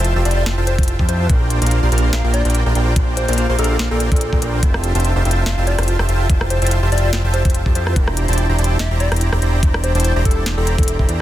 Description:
future bass; 144 BPM; 4/4; swing 55% on 16ths, half-time; F major; A4 = 440 Hz
concert harp; arpeggios; 0.0-11.2 s; D4 to G5; -28 LUFS; right 3 dB; sidechain pumping, digital delay
dense compressed supersaw; riff; 0.0-11.2 s; Bb3 to C6; -22 LUFS; right 1 dB; sidechain pumping, digital delay
fat analog bass; bass; 0.0-11.2 s; E1 to F2; -17 LUFS; equal; sidechain pumping
trap drum kit; drums; 0.0-11.2 s; hi-hat, rim click, snare drum; -25 LUFS; left 1 dB
soft struck synth lead; melody; 0.3-11.1 s; A4 to F5; -26 LUFS; left 3 dB; chorus, tremolo, sidechain pumping, digital delay
electronic kick drum; drums; 0.8-11.1 s; -16 LUFS; equal
digital ambience; dense, heavily limited modern master; -14 LUFS; side -13 dB against mid
0.0-11.2 A section
0.0 Fmaj9; 1.3 Bb6; 4.6 Fmaj9; 8.0 C9/E
0.04 0.46 0.88 | 1.29 1.71 2.13 2.54 | 2.96 3.38 3.79 4.21 | 4.63 5.04 5.46 5.88 | 6.29 6.71 7.13 7.54 | 7.96 8.38 8.79 9.21 | 9.63 10.04 10.46 10.88

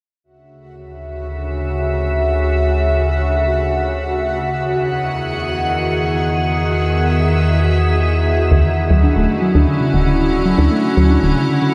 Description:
IDM; free time; D major; A4 = 440 Hz
icy glass pad; sustained chords; 1.0-11.7 s; D2 to F#5; -19 LUFS; equal; chorus, built-in reverb
bubbling stepped-filter texture; texture; 1.1-11.7 s; F#4 to F#5; -27 LUFS; equal; chorus, built-in reverb
warbly dusty pluck; arpeggios; 8.5-11.7 s; C#3 to D4; -20 LUFS; equal; chorus, diffuse ambient delay
woody FM bass; bass; 8.5-11.3 s; D1 to D2; -17 LUFS; equal
wet huge ambient reverb, RT60 7.6 s; dreamy mix soaked in reverb; -16 LUFS; mono
0.2-8.5 A section; 8.5-11.7 B section
filter sweep on ambient pad 0.2-8.5
0.2 Dmaj9; 4.4 Emaj9; 8.5 Dmaj9
free time

